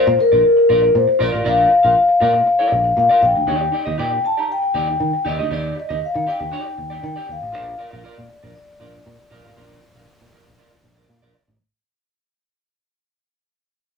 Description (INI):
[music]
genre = disco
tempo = 118 BPM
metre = 4/4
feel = straight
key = unclear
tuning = A4 = 441 Hz
[part]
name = vibraphone with soft mallets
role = melody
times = 0.0-11.1 s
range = Bb4 to Bb5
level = -16 LUFS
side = left 3 dB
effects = none
[part]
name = clean electric guitar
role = accompaniment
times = 0.0-11.5 s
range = Eb4 to F5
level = -26 LUFS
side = right 5 dB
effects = none
[part]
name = fingered electric bass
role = bass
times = 0.1-11.6 s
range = A1 to Eb3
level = -25 LUFS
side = right 1 dB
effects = none
[sound]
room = moderate studio ambience, RT60 0.5 s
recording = band playing live in one room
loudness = -14 LUFS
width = side -5 dB against mid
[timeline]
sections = 0.0-11.6 A section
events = fade-out 0.0-11.6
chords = 0.0 Bb; 3.5 Ebmaj7; 7.5 Bb